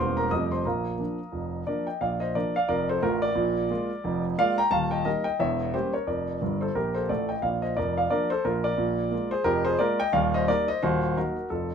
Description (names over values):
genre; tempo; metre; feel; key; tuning
jazz, stride piano; 177 BPM; 4/4; swing 58% on 8ths; Bb major; A4 = 442 Hz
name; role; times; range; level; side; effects
warm grand piano; solo; 0.0-11.7 s; Eb1 to Eb6; -24 LUFS; equal; none
room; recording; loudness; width
moderate club reverb, RT60 0.6 s; minimal, uncompressed stereo recording; -24 LUFS; side -7 dB against mid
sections
0.0-2.0 A section; 2.0-11.7 A section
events
grand piano fill 6.4-7.4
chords
0.3 F9; 0.7 Bb; 3.4 Bb7; 4.7 Eb; 5.4 Edim7; 6.1 Bb/F; 6.8 Cm13; 7.4 Bb; 8.8 Bb7; 10.1 Eb; 10.8 Ebm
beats
0.32 | 0.66 0.99 1.33 1.67 | 2.01 2.35 2.69 3.03 | 3.37 3.71 4.04 4.38 | 4.72 5.06 5.40 5.74 | 6.08 6.42 6.75 7.09 | 7.43 7.77 8.11 8.45 | 8.79 9.12 9.46 9.80 | 10.14 10.48 10.82 11.16 | 11.50